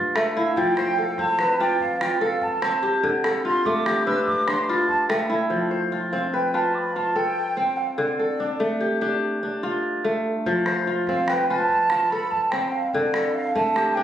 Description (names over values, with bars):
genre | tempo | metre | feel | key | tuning
west african traditional, West African string and xylophone music | 97 BPM (dotted quarters) | 12/8 | straight | F lydian | A4 = 444 Hz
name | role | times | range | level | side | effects
kora | arpeggios | 0.0-14.0 s | D3 to D5 | -23 LUFS | left 1 dB | none
breathy mellow wooden flute | melody | 0.1-14.0 s | D5 to E6 | -24 LUFS | right 2 dB | tape echo
calabash | percussion | 0.2-5.2, 10.5-14.0 s | none | -30 LUFS | equal | none
room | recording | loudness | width
moderate studio reverb, RT60 0.6 s | recorded on a phone in the room, studio reverb, compression | -20 LUFS | side -10 dB against mid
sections
0.0-5.5 A section; 5.5-14.0 B section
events
flute solo 0.0-5.5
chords
0.0 Dm; 0.6 F; 3.0 Dm; 5.5 F; 8.0 Dm; 10.5 F; 12.9 Dm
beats
| 0.57 1.18 1.80 2.42 | 3.03 3.65 4.27 4.88 | 5.50 6.12 6.74 7.36 | 7.98 8.60 9.22 9.84 | 10.46 11.08 11.70 12.32 | 12.94 13.56